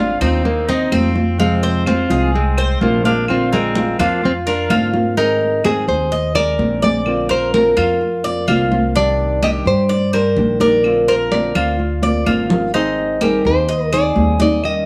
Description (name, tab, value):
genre	latin, Cuban son and guajira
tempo	127 BPM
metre	4/4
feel	straight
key	unclear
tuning	A4 = 441 Hz
part	nylon-string guitar	melody	0.0-14.9 s	Ab3 to Eb5	-20 LUFS	equal	none
part	clear trumpet	second line	0.0-4.9 s	C4 to F4	-27 LUFS	equal	none
part	nylon-string guitar	accompaniment	0.0-14.9 s	C3 to Ab4	-24 LUFS	equal	none
part	Cuban tres	arpeggios	0.0-14.9 s	C4 to F5	-24 LUFS	equal	none
part	upright bass	bass	0.0-14.9 s	Ab1 to Ab2	-24 LUFS	equal	none
part	claves	percussion	0.2-14.9 s	none	-32 LUFS	equal	none
part	congas	percussion	0.2-14.9 s	none	-23 LUFS	equal	none
room	light reverb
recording	none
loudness	-16 LUFS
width	mono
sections	0.0-5.2 A section; 5.2-14.9 B section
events	drum fill 12.0-12.7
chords	0.0 Ab6; 1.4 Fm; 3.3 Bbadd9; 5.2 Abadd9; 7.1 Bbadd9; 9.0 Cmadd9; 10.8 Bbadd9; 12.7 Abmaj7